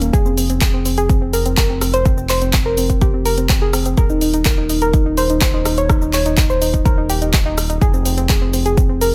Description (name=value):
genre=progressive house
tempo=125 BPM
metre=4/4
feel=straight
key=F minor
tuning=A4 = 438 Hz
part: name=soft round pluck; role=arpeggios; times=0.0-9.1 s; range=Bb3 to Db5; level=-21 LUFS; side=equal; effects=chorus, sidechain pumping, delay
part: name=round analog bass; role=bass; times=0.0-9.1 s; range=Eb1 to F1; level=-23 LUFS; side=equal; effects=sidechain pumping
part: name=deep house drum kit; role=drums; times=0.0-9.1 s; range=cabasa, handclaps, hi-hat, rim click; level=-24 LUFS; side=equal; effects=none
part: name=electronic kick drum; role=drums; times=0.1-8.9 s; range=none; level=-18 LUFS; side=equal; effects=none
room=digital ambience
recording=none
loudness=-16 LUFS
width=mono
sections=0.0-9.1 A section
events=none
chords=0.1 F5; 4.0 Eb5; 7.8 F5